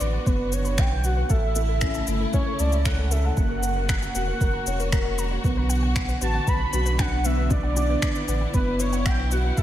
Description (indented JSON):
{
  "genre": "piano and strings electronica",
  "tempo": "116 BPM",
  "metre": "4/4",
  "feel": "straight",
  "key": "B minor",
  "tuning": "A4 = 441 Hz",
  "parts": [
    { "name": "warm velvety synth lead", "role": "melody", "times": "0.0-9.6 s", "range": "B4 to B5", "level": "-29 LUFS", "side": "right 1 dB", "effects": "chorus, tape echo" },
    { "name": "dark studio string section", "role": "sustained chords", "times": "0.0-9.6 s", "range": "C#3 to F#4", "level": "-33 LUFS", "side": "right 1 dB", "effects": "sidechain pumping" },
    { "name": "warbly dusty pluck", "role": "arpeggios", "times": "0.0-9.6 s", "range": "A4 to B5", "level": "-37 LUFS", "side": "left 3 dB", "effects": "chorus, cassette tape, sidechain pumping, tape echo" },
    { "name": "felt-muted upright piano", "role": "riff", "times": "0.0-9.6 s", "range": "A3 to F#5", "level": "-30 LUFS", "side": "left 1 dB", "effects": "analog chorus, tape echo" },
    { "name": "warm sub bass", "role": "bass", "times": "0.0-9.6 s", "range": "E1 to C#2", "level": "-25 LUFS", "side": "equal", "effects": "sidechain pumping" },
    { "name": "electronic shaker and finger snaps", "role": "drums", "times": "0.0-9.6 s", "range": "none", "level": "-32 LUFS", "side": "left 2 dB", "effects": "overdrive" },
    { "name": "electronic kick drum", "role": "drums", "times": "0.3-9.6 s", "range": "none", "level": "-24 LUFS", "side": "equal", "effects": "overdrive" }
  ],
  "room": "light reverb, digital ambience",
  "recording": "none",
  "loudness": "-21 LUFS",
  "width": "side -12 dB against mid",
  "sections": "0.0-9.6 A section",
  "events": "none",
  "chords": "0.0 Bm; 1.3 A; 3.4 F#; 5.4 Bm",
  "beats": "0.27 0.79 | 1.30 1.82 2.34 2.85 | 3.37 3.89 4.41 4.92 | 5.44 5.96 6.48 6.99 | 7.51 8.03 8.54 9.06 | 9.58"
}